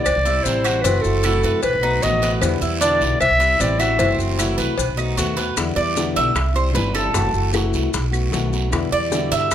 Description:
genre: latin, Cuban son and guajira.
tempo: 152 BPM.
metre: 4/4.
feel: straight.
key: E minor.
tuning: A4 = 443 Hz.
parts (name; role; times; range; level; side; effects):
warm clarinet; melody; 0.0-4.2 s; A4 to E5; -19 LUFS; equal; slapback echo.
fingerpicked plugged-in steel-string acoustic guitar; accompaniment; 0.0-9.5 s; B2 to F#4; -24 LUFS; left 3 dB; none.
upright bass; bass; 0.1-9.5 s; F#1 to G2; -22 LUFS; equal; none.
claves; percussion; 0.1-9.5 s; none; -32 LUFS; right 11 dB; none.
cowbell and bongos; percussion; 0.1-9.5 s; none; -28 LUFS; left 5 dB; none.
guiro; percussion; 0.1-9.5 s; none; -32 LUFS; right 6 dB; none.
maracas; percussion; 0.1-9.5 s; none; -31 LUFS; left 9 dB; none.
Cuban tres; arpeggios; 0.3-9.5 s; C4 to E5; -23 LUFS; right 4 dB; none.
room: light reverb.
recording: none.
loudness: -17 LUFS.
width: side -10 dB against mid.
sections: 0.0-5.6 A section; 5.6-9.5 B section.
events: Cuban tres solo 5.6-9.5.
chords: 0.1 C; 0.8 F#m7b5; 1.6 B7; 2.4 Em7; 3.2 C; 4.0 F#m7b5; 4.8 B7; 5.6 Em7; 6.4 C; 7.1 F#m7b5; 7.9 B7; 8.7 Em7.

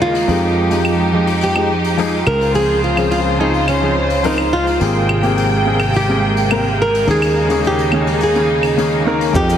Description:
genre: sunset chillout.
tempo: 106 BPM.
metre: 4/4.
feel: straight.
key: unclear.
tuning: A4 = 439 Hz.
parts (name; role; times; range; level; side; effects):
flamenco guitar; melody; 0.0-9.6 s; Db4 to Bb4; -18 LUFS; equal; digital delay, shimmer reverb.
rich symphonic string section; sustained chords; 0.0-9.6 s; C3 to G5; -19 LUFS; equal; shimmer reverb.
sustaining fretless electric bass; bass; 0.0-9.6 s; Ab1 to F2; -20 LUFS; equal; tube saturation.
hi-hat, claves and cabasa; drums; 0.1-9.6 s; none; -26 LUFS; left 1 dB; none.
warm grand piano; accompaniment; 0.3-9.6 s; Eb3 to Bb4; -20 LUFS; left 2 dB; auto-pan, digital delay, shimmer reverb.
electronic kick drum; drums; 9.3-9.5 s; none; -19 LUFS; equal; none.
room: moderate lush hall reverb, RT60 2.7 s.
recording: heavily compressed radio sound, multiband compression.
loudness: -13 LUFS.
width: side -9 dB against mid.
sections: 0.0-9.3 A section.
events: none.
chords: 0.3 Fm9; 2.3 Dbmaj7; 4.8 Abmaj9; 7.1 Eb7sus4.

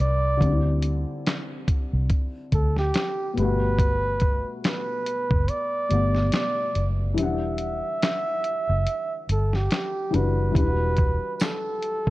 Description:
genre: lo-fi hip hop.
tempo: 71 BPM.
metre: 4/4.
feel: swing 58% on 16ths.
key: E minor.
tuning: A4 = 437 Hz.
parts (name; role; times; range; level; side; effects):
trumpet with bucket mute; melody; 0.0-12.1 s; G4 to E5; -27 LUFS; right 2 dB; none.
felt-muted upright piano; accompaniment; 0.0-12.1 s; B2 to F#5; -30 LUFS; left 3 dB; none.
vintage muted fingered electric bass; bass; 0.0-12.1 s; E1 to D2; -24 LUFS; equal; none.
lo-fi sampler-style drum kit; drums; 0.0-12.1 s; handclaps, hi-hat, kick drum, snare drum; -25 LUFS; equal; none.
tambourine; percussion; 11.4-11.6 s; none; -45 LUFS; right 5 dB; none.
room: light reverb, studio ambience.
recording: cassette tape.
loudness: -22 LUFS.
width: side -18 dB against mid.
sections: 0.0-10.6 A section; 10.6-12.1 A section.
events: kick muted 7.2-10.6.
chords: 0.4 D9sus4; 3.4 Gmaj9; 7.2 Em9.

